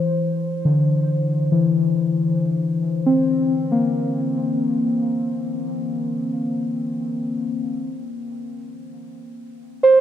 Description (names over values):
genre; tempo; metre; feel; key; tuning
ambient; free time; none; none; C mixolydian; A4 = 441 Hz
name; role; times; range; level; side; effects
muted felt-like synth keys; solo; 0.0-10.0 s; D3 to C5; -19 LUFS; left 1 dB; chorus, tape echo
room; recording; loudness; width
wet huge ambient reverb, RT60 7.8 s; cassette tape; -19 LUFS; side -10 dB against mid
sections
0.0-7.9 A section; 7.9-10.0 B section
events
none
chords
0.0 C7; 7.9 N.C.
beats
free time